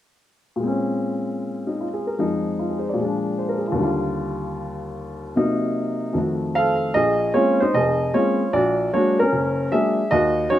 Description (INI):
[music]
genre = solo jazz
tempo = 152 BPM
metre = 4/4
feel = swing 66% on 8ths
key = Bb minor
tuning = A4 = 435 Hz
[part]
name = warm upright piano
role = solo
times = 0.6-10.6 s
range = F1 to F5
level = -19 LUFS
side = equal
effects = slapback echo
[sound]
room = little or no reverb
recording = recorded outdoors, with no room sound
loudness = -19 LUFS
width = side -12 dB against mid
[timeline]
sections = 0.6-6.9 A section; 6.9-10.6 B section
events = none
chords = 0.6 Bbm9; 2.2 Fm7; 3.0 Bb7; 3.8 Ebmaj9; 5.4 Cm7b5; 6.2 F7b9; 6.9 Bbm9; 8.5 Bb7alt